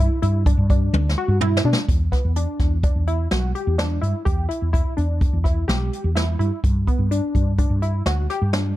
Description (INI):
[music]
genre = progressive instrumental, band music in an uneven meter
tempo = 126 BPM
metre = 5/4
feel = straight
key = E minor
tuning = A4 = 440 Hz
[part]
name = tight sequenced synth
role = arpeggios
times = 0.0-8.7 s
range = B3 to G4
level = -27 LUFS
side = equal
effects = chorus
[part]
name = woody fretless electric bass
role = bass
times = 0.0-8.7 s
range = B1 to B2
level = -21 LUFS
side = equal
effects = ensemble chorus
[part]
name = jazz brush drum kit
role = drums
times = 0.2-8.6 s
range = hi-hat, kick drum, snare drum, toms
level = -21 LUFS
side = equal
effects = none
[sound]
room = studio reverb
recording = dark, warm production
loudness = -18 LUFS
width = side -15 dB against mid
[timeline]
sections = 0.0-1.9 A section; 1.9-8.8 B section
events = drum fill 0.9-1.9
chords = 0.0 G5; 1.9 Em7; 6.6 G5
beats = 0.46 0.94 1.41 | 1.89 2.36 2.83 3.31 3.79 | 4.26 4.74 5.21 5.68 6.16 | 6.63 7.11 7.58 8.06 8.53